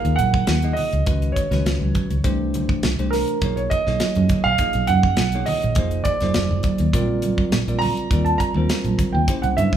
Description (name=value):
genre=electric jazz fusion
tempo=102 BPM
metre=4/4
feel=straight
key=unclear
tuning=A4 = 442 Hz
part: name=warm concert grand piano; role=melody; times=0.0-9.8 s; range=Bb4 to Bb5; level=-23 LUFS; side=right 4 dB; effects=none
part: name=bell-like tine electric piano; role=accompaniment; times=0.0-9.8 s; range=Eb3 to Eb5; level=-26 LUFS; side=left 3 dB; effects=none
part: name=fingered electric bass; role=bass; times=0.0-9.8 s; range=F1 to G2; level=-22 LUFS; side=right 1 dB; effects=none
part: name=tight funk drum kit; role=drums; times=0.0-9.8 s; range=hi-hat, kick drum, snare drum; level=-24 LUFS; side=equal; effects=none
part: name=congas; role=percussion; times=0.2-9.7 s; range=none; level=-28 LUFS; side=right 6 dB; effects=none
room=light reverb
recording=studio ambience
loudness=-18 LUFS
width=side -10 dB against mid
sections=0.0-9.8 A section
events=none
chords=0.0 Ebmadd9; 1.1 Dbsus2; 2.2 Cadd9; 3.4 Bmaj9; 5.8 Fm7; 6.9 Bbadd9; 8.1 Ebmaj9